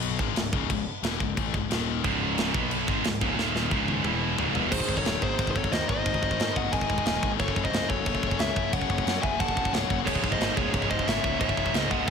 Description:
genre	heavy metal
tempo	179 BPM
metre	4/4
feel	straight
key	C# minor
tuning	A4 = 440 Hz
part	scooped high-gain guitar	riff	0.0-12.1 s	C#2 to B3	-30 LUFS	left 15 dB	distortion
part	fuzz picked electric bass	bass	0.0-12.1 s	C#1 to G#2	-33 LUFS	right 1 dB	overdrive
part	tight metal drum kit	drums	0.0-12.1 s	china cymbal, crash cymbal, kick drum, snare drum, toms	-29 LUFS	right 1 dB	none
part	high-gain distorted guitar	riff	2.0-4.7, 10.1-12.1 s	C#2 to B3	-29 LUFS	right 16 dB	distortion
part	high-gain lead guitar	melody	4.7-12.1 s	B#4 to A5	-30 LUFS	left 1 dB	distortion, ping-pong delay
part	high-gain lead guitar	second line	4.7-12.1 s	G#4 to F#5	-35 LUFS	right 5 dB	distortion
room	light reverb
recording	none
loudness	-24 LUFS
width	side -6 dB against mid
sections	0.0-4.7 A section; 4.7-12.1 B section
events	drum fill 3.4-4.7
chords	0.2 C#m; 1.7 D#5; 2.0 C#5; 2.5 B5; 2.9 C#5; 3.4 D#5; 3.7 C#5; 4.1 E5; 4.4 C#m; 4.7 G#; 7.4 F#m; 10.1 C#m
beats	0.02 0.36 | 0.70 1.03 1.37 1.71 | 2.04 2.38 2.71 3.05 | 3.38 3.72 4.05 4.39 | 4.72 5.06 5.39 5.72 | 6.06 6.39 6.73 7.06 | 7.40 7.73 8.07 8.40 | 8.73 9.07 9.40 9.74 | 10.07 10.40 10.74 11.07 | 11.41 11.74 12.07

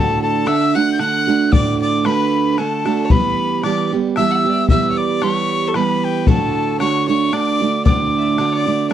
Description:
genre	celtic folk, Celtic waltz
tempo	114 BPM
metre	3/4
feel	straight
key	D major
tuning	A4 = 440 Hz
part	mellow wooden whistle	melody	0.0-8.9 s	G5 to G6	-20 LUFS	left 1 dB	none
part	clear fiddle	second line	0.0-8.9 s	A4 to F#5	-24 LUFS	left 7 dB	none
part	picked steel-string acoustic guitar	accompaniment	0.0-8.9 s	D2 to G4	-18 LUFS	right 7 dB	none
part	bodhran	percussion	0.5-8.9 s	none	-18 LUFS	left 3 dB	none
room	little or no reverb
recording	dry, close 1970s-style studio recording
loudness	-14 LUFS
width	side -10 dB against mid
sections	0.0-8.9 A section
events	none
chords	0.0 D; 3.1 Em; 6.3 D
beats	0.47 0.99 | 1.52 2.05 2.58 | 3.11 3.63 4.16 | 4.69 5.22 5.75 | 6.27 6.80 7.33 | 7.85 8.38 8.90

